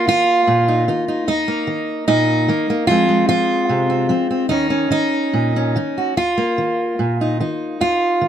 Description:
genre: folk, solo fingerstyle acoustic guitar.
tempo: 74 BPM.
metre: 4/4.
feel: rubato.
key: unclear.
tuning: A4 = 441 Hz.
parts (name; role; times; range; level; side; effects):
fingerpicked steel-string acoustic guitar; solo; 0.0-8.3 s; Eb2 to Gb4; -15 LUFS; equal; none.
room: little or no reverb.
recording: close, detailed microphones.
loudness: -15 LUFS.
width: side -9 dB against mid.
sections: 0.0-6.2 A section; 6.2-8.3 A section.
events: none.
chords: 0.0 Ebsus2; 2.9 Fm; 4.5 Eb7(no3); 6.2 Ebsus2.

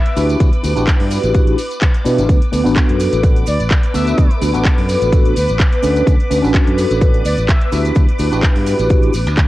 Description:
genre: filtered disco house.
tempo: 127 BPM.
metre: 4/4.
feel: swing 54% on 16ths.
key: D major.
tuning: A4 = 443 Hz.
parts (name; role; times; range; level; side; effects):
analog synth brass; melody; 0.0-0.2, 3.5-4.3, 7.3-7.8 s; D5 to E5; -26 LUFS; equal; chorus, sidechain pumping, cassette tape, tape echo.
string machine, full ensemble; sustained chords; 0.0-9.5 s; B4 to D6; -23 LUFS; equal; ensemble chorus, sidechain pumping, cassette tape.
house drum kit; drums; 0.1-9.5 s; handclaps, hi-hat, tambourine; -24 LUFS; equal; cassette tape.
maracas; percussion; 0.1-9.5 s; none; -40 LUFS; right 10 dB; none.
mellow tine electric piano; accompaniment; 0.2-9.1 s; B3 to B4; -18 LUFS; equal; medium stereo tremolo, phaser, sidechain pumping, cassette tape.
modern bright fingered electric bass; bass; 0.2-9.5 s; A1 to B2; -18 LUFS; equal; sidechain pumping.
electronic kick drum; drums; 0.4-9.5 s; none; -13 LUFS; equal; cassette tape.
room: little or no reverb.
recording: home recording on cassette.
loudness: -12 LUFS.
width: side -17 dB against mid.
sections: 0.0-9.5 A section.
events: none.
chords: 0.2 Em9; 2.3 D6; 5.8 Bm9; 7.7 Em9.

